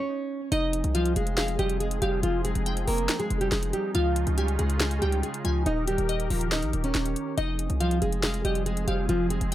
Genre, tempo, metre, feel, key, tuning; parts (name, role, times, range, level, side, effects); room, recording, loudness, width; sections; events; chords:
hip hop, trap; 140 BPM; 4/4; half-time; F minor; A4 = 439 Hz
nylon-string guitar; melody; 0.0-9.5 s; F3 to Eb5; -28 LUFS; right 1 dB; tape echo
glassy wavetable pluck; second line; 0.5-9.5 s; Eb5 to Ab5; -36 LUFS; left 1 dB; chorus, tape echo
warm analog pad; sustained chords; 0.5-9.5 s; Db3 to Bb4; -35 LUFS; right 1 dB; chorus
hard-hitting 808-style bass; bass; 0.5-9.5 s; Eb1 to Db2; -27 LUFS; equal
trap drum kit; drums; 0.5-9.5 s; hi-hat, snare drum; -31 LUFS; left 1 dB
little or no reverb; -24 LUFS; side -13 dB against mid
0.5-9.5 A section
stop 0.0-0.5
0.0 N.C.; 0.5 Fm7; 3.9 Dbadd9; 5.7 Eb; 7.4 Fm7